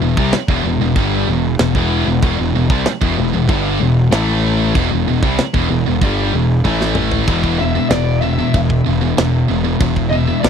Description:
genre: heavy metal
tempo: 95 BPM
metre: 4/4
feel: straight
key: E minor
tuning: A4 = 441 Hz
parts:
  - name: heavy high-gain guitar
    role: riff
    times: 0.0-10.5 s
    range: E2 to A3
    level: -19 LUFS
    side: right 12 dB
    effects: distortion
  - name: sludgy distorted guitar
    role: riff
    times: 0.0-10.5 s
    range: E2 to A3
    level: -18 LUFS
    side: left 10 dB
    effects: overdrive
  - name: fuzz picked electric bass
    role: bass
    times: 0.0-10.5 s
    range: E1 to C2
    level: -19 LUFS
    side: right 1 dB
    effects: overdrive
  - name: tight metal drum kit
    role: drums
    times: 0.2-10.5 s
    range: china cymbal, kick drum, snare drum, toms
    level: -18 LUFS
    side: right 1 dB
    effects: none
  - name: bluesy overdriven lead guitar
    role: melody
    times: 7.6-10.5 s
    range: D5 to E5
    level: -22 LUFS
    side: left 4 dB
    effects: distortion, tape echo
room: little or no reverb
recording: dry, close 1970s-style studio recording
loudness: -13 LUFS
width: side -7 dB against mid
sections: 0.0-7.3 A section; 7.3-10.5 B section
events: drum fill 6.7-7.3; lead electric guitar solo 7.3-10.5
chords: 0.0 Em; 4.1 A5; 4.8 Em; 6.7 A5; 7.3 E5

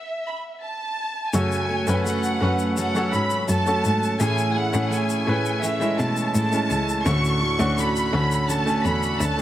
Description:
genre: piano-driven pop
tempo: 84 BPM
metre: 4/4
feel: straight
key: unclear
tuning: A4 = 441 Hz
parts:
  - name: dark studio violin section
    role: melody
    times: 0.0-9.4 s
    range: E5 to C#6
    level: -26 LUFS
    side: right 1 dB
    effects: none
  - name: clear concert grand piano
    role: accompaniment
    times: 1.3-9.4 s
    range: A2 to G#5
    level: -25 LUFS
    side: equal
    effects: none
  - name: tonewheel organ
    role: sustained chords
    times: 1.3-9.4 s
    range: D3 to C#5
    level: -34 LUFS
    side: equal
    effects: slow rotary speaker
  - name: picked steel-string acoustic guitar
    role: riff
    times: 1.3-9.4 s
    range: F#2 to A4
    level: -28 LUFS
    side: right 3 dB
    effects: none
  - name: clear cello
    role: bass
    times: 1.3-9.4 s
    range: C#2 to B2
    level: -25 LUFS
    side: left 1 dB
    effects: none
  - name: tube shaker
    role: percussion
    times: 1.3-9.4 s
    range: none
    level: -36 LUFS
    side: left 6 dB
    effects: none
room: light reverb, small room ambience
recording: none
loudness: -20 LUFS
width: side -12 dB against mid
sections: 0.0-1.3 A section; 1.3-9.4 B section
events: stop 0.0-1.3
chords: 0.0 A5; 1.3 F#m; 4.2 Amaj7; 7.1 Dmaj7

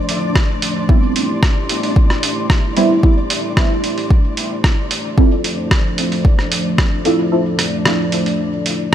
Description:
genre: dub techno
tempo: 112 BPM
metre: 4/4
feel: straight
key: A minor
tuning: A4 = 440 Hz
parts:
  - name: dark analog pad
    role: sustained chords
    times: 0.0-8.9 s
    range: F3 to C6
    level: -22 LUFS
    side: equal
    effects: chorus, sidechain pumping
  - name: flickering grainy texture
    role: texture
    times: 0.0-8.9 s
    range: D4 to D5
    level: -27 LUFS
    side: left 1 dB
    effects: built-in reverb, sidechain pumping
  - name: lo-fi sampler-style drum kit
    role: drums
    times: 0.1-8.9 s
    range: hi-hat, rim click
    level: -20 LUFS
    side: right 1 dB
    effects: none
  - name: electronic kick drum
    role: drums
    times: 0.4-6.9 s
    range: none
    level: -14 LUFS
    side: equal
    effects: overdrive
  - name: deep mellow chord stab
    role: stabs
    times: 0.9-7.4 s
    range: G3 to A4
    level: -20 LUFS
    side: right 2 dB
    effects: chorus, phaser, sidechain pumping, dub echo
room: light reverb, digital ambience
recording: none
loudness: -13 LUFS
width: side -10 dB against mid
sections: 0.0-8.9 A section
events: kick drops out 7.3-8.9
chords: 0.0 Dm7; 0.9 Am7; 5.2 Dm7

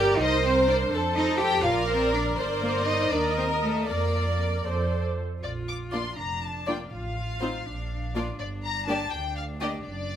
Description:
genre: quick classical-period movement for string orchestra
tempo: 81 BPM (dotted quarters)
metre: 6/8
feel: rubato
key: Bb major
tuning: A4 = 440 Hz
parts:
  - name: rich studio violin section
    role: melody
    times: 0.0-10.2 s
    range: A4 to D6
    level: -31 LUFS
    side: left 4 dB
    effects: none
  - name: warm symphonic violin section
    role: second line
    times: 0.0-9.7 s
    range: F4 to D5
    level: -29 LUFS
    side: left 3 dB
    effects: none
  - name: dark symphonic viola section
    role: accompaniment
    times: 0.0-9.7 s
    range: Bb3 to Eb5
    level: -29 LUFS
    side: right 3 dB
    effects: none
  - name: rich chamber cello section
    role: bass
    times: 0.0-10.2 s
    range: A3 to G4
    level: -31 LUFS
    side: right 1 dB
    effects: none
  - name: rich symphonic double bass section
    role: bass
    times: 0.0-10.2 s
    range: F1 to F2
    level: -31 LUFS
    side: right 2 dB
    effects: none
room: light reverb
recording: close, detailed microphones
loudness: -24 LUFS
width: side -10 dB against mid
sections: 0.0-5.4 A section; 5.4-10.2 B section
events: none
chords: 0.2 Cm7; 0.9 F7; 1.6 Bb; 2.4 Gm; 3.1 Cm7/Eb (rootless); 3.9 Bb/F; 4.7 F; 5.4 Bb; 6.9 F7/A; 7.7 Bb; 8.4 Gm

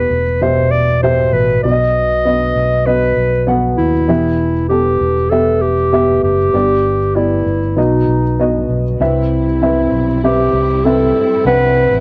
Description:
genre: piano-driven pop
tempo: 98 BPM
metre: 4/4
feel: straight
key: E minor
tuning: A4 = 439 Hz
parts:
  - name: mellow clarinet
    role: melody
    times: 0.0-12.0 s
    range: D#4 to D#5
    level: -17 LUFS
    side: equal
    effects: cassette tape
  - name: dark upright piano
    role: accompaniment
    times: 0.0-12.0 s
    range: G2 to F#5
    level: -19 LUFS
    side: equal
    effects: cassette tape
  - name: fingered electric bass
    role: bass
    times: 0.0-12.0 s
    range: E1 to D#2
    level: -21 LUFS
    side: equal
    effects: none
  - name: warm studio string section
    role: sustained chords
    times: 9.0-12.0 s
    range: G3 to E4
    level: -27 LUFS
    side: equal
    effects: cassette tape
room: moderate booth ambience, RT60 0.2 s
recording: home recording on cassette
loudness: -14 LUFS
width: mono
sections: 0.0-9.0 A section; 9.0-12.0 B section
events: none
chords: 0.0 Em; 1.6 B; 4.1 Em; 6.5 G; 7.8 B; 9.0 Cmaj7

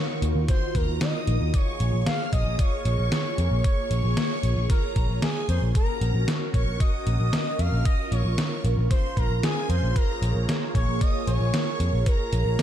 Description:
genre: synthwave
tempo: 114 BPM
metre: 4/4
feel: straight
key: Bb minor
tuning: A4 = 439 Hz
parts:
  - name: expressive synth lead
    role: melody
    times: 0.0-12.6 s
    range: Ab4 to F5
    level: -32 LUFS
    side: equal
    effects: analog chorus, digital delay
  - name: string machine, violins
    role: second line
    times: 0.0-12.6 s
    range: Ab5 to F6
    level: -37 LUFS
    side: equal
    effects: ensemble chorus, slapback echo, digital delay
  - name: phased analog pad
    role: sustained chords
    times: 0.0-12.6 s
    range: Eb3 to Db5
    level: -32 LUFS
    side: right 1 dB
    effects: phaser, chorus, sidechain pumping
  - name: picked electric bass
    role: bass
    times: 0.2-12.6 s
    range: Bb1 to F2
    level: -23 LUFS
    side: equal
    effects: tube saturation, sidechain pumping
  - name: detuned 8-bit digital drum machine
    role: drums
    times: 0.2-12.6 s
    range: hi-hat, snare drum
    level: -29 LUFS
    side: equal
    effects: overdrive
  - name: electronic kick drum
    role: drums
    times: 0.5-12.2 s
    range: none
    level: -24 LUFS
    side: equal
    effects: overdrive
room: light reverb, digital ambience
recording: none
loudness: -22 LUFS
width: side -10 dB against mid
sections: 0.0-12.6 A section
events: none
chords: 0.0 Ebmadd9; 1.5 Bbm7; 5.7 Gb/Bb; 10.0 Bbm7

